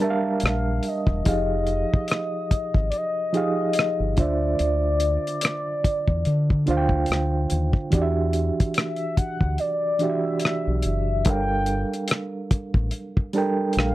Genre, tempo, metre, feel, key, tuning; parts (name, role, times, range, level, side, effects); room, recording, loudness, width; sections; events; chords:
R&B, neo-soul; 72 BPM; 4/4; swing 57% on 16ths; A4 = 442 Hz
mellow horn-like synth lead; melody; 0.0-13.9 s; A#4 to G5; -27 LUFS; left 2 dB; chorus, phaser, slapback echo
overdriven reed electric piano; accompaniment; 0.0-13.9 s; D3 to A5; -26 LUFS; right 3 dB; fast tremolo
cloth-damped thuddy drum kit; drums; 0.0-13.9 s; hi-hat, kick drum, rim click; -22 LUFS; left 1 dB
deep dub fingered electric bass; bass; 0.4-13.9 s; E1 to D3; -24 LUFS; equal
little or no reverb; dry, close 1970s-style studio recording; -21 LUFS; side -16 dB against mid
0.0-13.9 A section
0.0 Gm9; 1.3 Fm9; 4.2 Dm9; 7.9 Em9; 11.3 Gm9